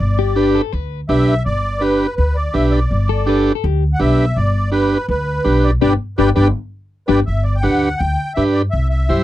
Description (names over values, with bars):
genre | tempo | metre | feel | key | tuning
latin | 165 BPM | 4/4 | straight | G major | A4 = 439 Hz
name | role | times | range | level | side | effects
musette accordion | melody | 0.0-9.2 s | B4 to G5 | -22 LUFS | equal | none
upright bass | bass | 0.0-9.2 s | G1 to G2 | -17 LUFS | equal | none
clean electric guitar | second line | 0.2-7.2 s | D4 to B4 | -20 LUFS | left 16 dB | none
combo organ | accompaniment | 0.4-9.2 s | D4 to C5 | -16 LUFS | right 2 dB | none
room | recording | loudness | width
light reverb | dry, close 1970s-style studio recording | -14 LUFS | side -14 dB against mid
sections
0.0-7.3 A section; 7.3-9.2 B section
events
band accent 5.8-7.3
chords
0.0 G; 8.7 C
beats
| 0.00 0.36 0.73 1.09 | 1.45 1.82 2.18 2.55 | 2.91 3.27 3.64 4.00 | 4.37 4.73 5.09 5.46 | 5.82 6.18 6.55 6.91 | 7.28 7.64 8.00 8.37 | 8.73 9.09